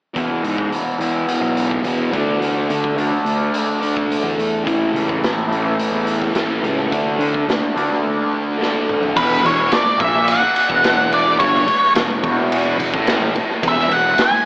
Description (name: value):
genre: psychedelic rock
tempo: 107 BPM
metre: 4/4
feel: straight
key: unclear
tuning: A4 = 439 Hz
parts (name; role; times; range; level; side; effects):
- fuzz guitar; riff; 0.1-14.2 s; E2 to D4; -19 LUFS; equal; distortion, phaser, dub echo
- fuzz picked electric bass; bass; 0.2-14.2 s; E1 to D3; -22 LUFS; equal; overdrive
- raw garage drum kit; drums; 0.2-14.3 s; crash cymbal, hi-hat, kick drum, ride cymbal, snare drum, toms; -22 LUFS; equal; dub echo
- octave-fuzz lead guitar; melody; 9.2-14.5 s; B4 to G#5; -16 LUFS; equal; distortion, dub echo
- congas; percussion; 9.4-14.4 s; none; -35 LUFS; equal; none
room: light reverb, small room ambience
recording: echo-heavy mix, AM radio sound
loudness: -15 LUFS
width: side -24 dB against mid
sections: 0.2-9.2 A section; 9.2-14.5 B section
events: drum fill 8.6-9.2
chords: 0.2 E; 2.1 D5; 4.7 A; 6.9 D5; 9.2 Esus2